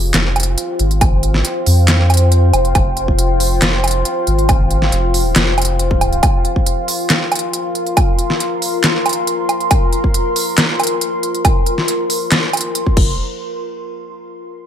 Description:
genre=deep dubstep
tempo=138 BPM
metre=4/4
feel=half-time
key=F minor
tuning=A4 = 440 Hz
part: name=deep dark ambient pad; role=sustained chords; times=0.0-13.2 s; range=F4 to C6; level=-19 LUFS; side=left 1 dB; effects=chorus, built-in reverb
part: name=soft dub sub bass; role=bass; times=0.0-6.2, 13.0-13.2 s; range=F1 to F2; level=-15 LUFS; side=equal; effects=none
part: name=dubstep drum kit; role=drums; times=0.1-13.1 s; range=crash cymbal, handclaps, hi-hat, snare drum, woodblock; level=-17 LUFS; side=right 1 dB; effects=none
part: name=electronic kick drum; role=drums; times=1.0-13.1 s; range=none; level=-15 LUFS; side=equal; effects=none
room=light reverb, digital ambience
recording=none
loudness=-13 LUFS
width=side -9 dB against mid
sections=0.0-13.2 A section; 13.2-14.7 B section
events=none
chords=0.0 Fsus2; 13.2 N.C.

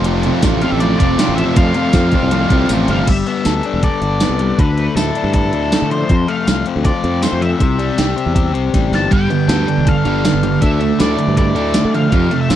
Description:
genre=indie rock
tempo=159 BPM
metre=4/4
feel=straight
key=F major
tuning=A4 = 440 Hz
part: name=overdriven combo organ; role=sustained chords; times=0.0-3.0 s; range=F4 to A5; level=-29 LUFS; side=right 2 dB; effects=none
part: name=biting overdriven guitar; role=riff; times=0.0-3.1, 9.1-12.6 s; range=F2 to F4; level=-17 LUFS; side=right 7 dB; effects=wide subtle chorus
part: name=overdriven electric guitar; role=riff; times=0.0-12.6 s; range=F2 to A4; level=-18 LUFS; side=left 8 dB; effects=spring reverb
part: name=modern bright fingered electric bass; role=bass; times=0.0-12.6 s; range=E1 to D3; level=-18 LUFS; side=right 1 dB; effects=none
part: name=gated 80s digital drum machine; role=drums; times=0.0-12.6 s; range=crash cymbal, hi-hat, kick drum, snare drum, tambourine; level=-16 LUFS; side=right 1 dB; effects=gated reverb, gated reverb snare
part: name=octave-fuzz lead guitar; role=melody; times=0.6-12.6 s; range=A4 to A5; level=-23 LUFS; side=equal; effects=distortion, slapback echo
room=little or no reverb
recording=dry, close 1970s-style studio recording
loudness=-13 LUFS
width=side -11 dB against mid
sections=0.0-3.1 A section; 3.1-12.6 B section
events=kick and snare drop out 2.7-3.1; drum fill 8.7-9.1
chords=0.0 F6; 3.1 Gadd9; 4.6 Dmadd9; 6.1 F; 7.6 C; 9.1 Gadd9; 10.6 Dmadd9

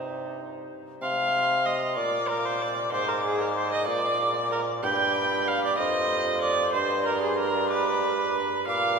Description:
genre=classical, renaissance-style consort dance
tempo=63 BPM (dotted quarters)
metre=6/8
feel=straight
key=C minor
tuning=A4 = 440 Hz
part: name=alto recorder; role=melody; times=0.0-9.0 s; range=B5 to D6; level=-33 LUFS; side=left 5 dB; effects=none
part: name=warm viola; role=second line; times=0.0-9.0 s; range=Eb4 to G5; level=-26 LUFS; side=right 2 dB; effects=none
part: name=warm bassoon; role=bass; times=0.0-9.0 s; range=F2 to C3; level=-29 LUFS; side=right 1 dB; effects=none
room=wet cathedral reverb, RT60 6.9 s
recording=recorded in a church or concert hall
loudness=-23 LUFS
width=side -5 dB against mid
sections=0.0-1.0 A section; 1.0-9.0 B section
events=none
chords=0.0 Cm; 2.0 Bb; 2.9 Bb9/Ab; 3.9 Bb; 4.8 G; 5.8 F5; 6.7 Gsus4

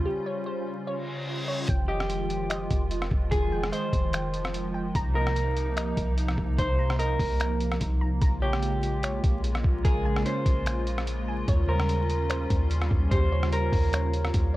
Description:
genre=hip hop, atmospheric cloud-rap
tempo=147 BPM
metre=4/4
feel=half-time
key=F minor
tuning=A4 = 440 Hz
part: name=hollow soft pad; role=sustained chords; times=0.0-14.6 s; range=C3 to F4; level=-32 LUFS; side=equal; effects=ensemble chorus, sidechain pumping
part: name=glassy wavetable pluck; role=arpeggios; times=0.0-14.6 s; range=Db4 to Bb5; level=-36 LUFS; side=equal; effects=chorus, low-pass filter, tape echo
part: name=clean 808-style bass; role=bass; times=0.0-14.6 s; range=F1 to Eb2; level=-28 LUFS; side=equal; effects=none
part: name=drifting glass-harmonics texture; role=texture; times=0.0-1.7, 9.3-14.6 s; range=G3 to C5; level=-41 LUFS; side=left 1 dB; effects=chorus, built-in reverb
part: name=reverse cymbal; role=sound effects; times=1.0-1.7 s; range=none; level=-34 LUFS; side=left 1 dB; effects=none
part: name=trip hop sampler-style drum kit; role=drums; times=1.7-14.4 s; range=finger snaps, hi-hat, kick drum, rim click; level=-28 LUFS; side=equal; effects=none
part: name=electric guitar at the edge of break-up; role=melody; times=1.9-14.3 s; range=G4 to C5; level=-32 LUFS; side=right 1 dB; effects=low-pass filter, tape echo
room=little or no reverb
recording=dry, gritty hardware recording, vinyl crackle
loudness=-24 LUFS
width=side -17 dB against mid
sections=0.0-1.7 A section; 1.7-14.6 B section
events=break 0.1-1.7; reverse cymbal 1.0-1.7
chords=0.0 Eb13 (rootless); 1.7 Fm9; 5.0 Cm7; 8.2 Bbm7; 11.5 Eb13

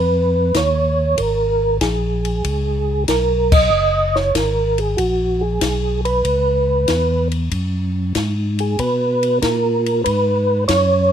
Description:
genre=soul jazz organ trio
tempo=95 BPM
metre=4/4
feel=swing 69% on 8ths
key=unclear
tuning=A4 = 440 Hz
part: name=percussive tonewheel organ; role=melody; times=0.0-11.1 s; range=Gb4 to Eb5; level=-17 LUFS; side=right 2 dB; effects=slow rotary speaker, chorus vibrato
part: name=tonewheel organ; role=bass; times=0.0-11.1 s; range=Gb1 to Cb3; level=-20 LUFS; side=equal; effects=chorus vibrato, slow rotary speaker
part: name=compact cocktail drum kit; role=drums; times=0.5-10.9 s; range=crash cymbal, hi-hat, kick drum, ride cymbal, snare drum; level=-22 LUFS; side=left 3 dB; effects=none
room=light reverb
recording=minimal, uncompressed stereo recording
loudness=-15 LUFS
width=side -9 dB against mid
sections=0.0-11.1 A section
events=band accent 3.4-3.7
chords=0.0 Dbsus2; 1.2 Absus2; 2.4 Db5; 3.7 Gbadd9; 6.2 Dbm7; 7.5 Gbsus2; 8.8 Cb5

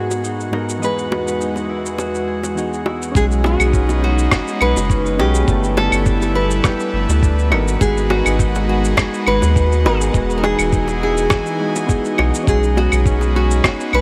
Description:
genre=sunset chillout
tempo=103 BPM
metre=4/4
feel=swing 54% on 16ths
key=B major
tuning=A4 = 438 Hz
part: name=nylon-string guitar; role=melody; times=0.0-14.0 s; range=F#4 to B4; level=-24 LUFS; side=equal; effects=diffuse ambient delay
part: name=soft electric-piano-like synth keys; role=accompaniment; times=0.0-14.0 s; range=G#2 to D#5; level=-28 LUFS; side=equal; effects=chorus, diffuse ambient delay
part: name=airy breathy pad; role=sustained chords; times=0.0-14.0 s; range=E2 to A4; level=-25 LUFS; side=equal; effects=chorus
part: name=Celtic harp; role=arpeggios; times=0.0-14.0 s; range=G#3 to G#4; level=-30 LUFS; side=equal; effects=diffuse ambient delay
part: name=electronic shaker, claves and rim click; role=drums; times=0.1-14.0 s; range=none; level=-26 LUFS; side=equal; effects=overdrive, small room ambience
part: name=bongos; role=percussion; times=0.1-13.8 s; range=none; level=-29 LUFS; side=equal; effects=none
part: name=round analog bass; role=bass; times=3.2-14.0 s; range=E1 to D#2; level=-20 LUFS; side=equal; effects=none
part: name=electronic kick drum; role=drums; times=3.2-13.8 s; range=none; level=-20 LUFS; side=equal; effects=overdrive, small room ambience
room=moderate huge ambient reverb, RT60 8.8 s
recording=dreamy mix soaked in reverb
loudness=-17 LUFS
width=mono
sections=0.0-3.2 A section; 3.2-14.0 B section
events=filter sweep on analog synth pad 0.0-3.2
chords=0.0 G#m7; 0.8 Emaj9; 3.2 B69; 5.5 G69; 7.5 G#m7; 10.1 Emaj9; 12.5 B69

